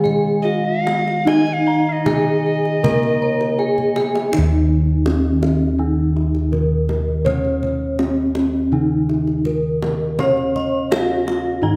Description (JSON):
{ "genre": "Javanese gamelan", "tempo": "81 BPM", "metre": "4/4", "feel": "uneven beats", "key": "Eb slendro", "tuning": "A4 = 440 Hz", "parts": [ { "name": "gamelan-type bronze metallophone", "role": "melody", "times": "0.0-11.8 s", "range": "Db4-40c to Db5-40c", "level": "-22 LUFS", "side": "equal", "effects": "none" }, { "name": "gamelan-type bronze metallophone", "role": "accompaniment", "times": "0.0-11.8 s", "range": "Eb3 to Db4-40c", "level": "-26 LUFS", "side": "equal", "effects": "none" }, { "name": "gamelan-type bossed gongs", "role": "arpeggios", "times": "0.0-4.0, 10.2-11.8 s", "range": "Db5-40c to Bb5+20c", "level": "-32 LUFS", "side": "equal", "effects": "none" }, { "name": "gamelan-type bronze metallophone", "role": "arpeggios", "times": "0.0-4.3, 10.2-11.8 s", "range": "Eb5 to Db6-40c", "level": "-31 LUFS", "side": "equal", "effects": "none" }, { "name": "gamelan-type bossed gongs", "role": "bass", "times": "0.0-11.8 s", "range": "Eb2 to Db5-40c", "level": "-24 LUFS", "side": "equal", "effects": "none" }, { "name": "kendang", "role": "percussion", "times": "0.1-11.4 s", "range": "none", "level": "-29 LUFS", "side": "equal", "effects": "none" }, { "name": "breathy alto recorder", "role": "second line", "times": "0.4-4.0 s", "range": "Eb5 to Ab5-22c", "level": "-25 LUFS", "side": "equal", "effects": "none" } ], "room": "moderate recital hall reverb, RT60 1.8 s", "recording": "none", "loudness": "-18 LUFS", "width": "mono", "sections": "0.0-4.3 A section; 4.3-11.8 B section", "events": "drum fill 3.8-4.3", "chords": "none" }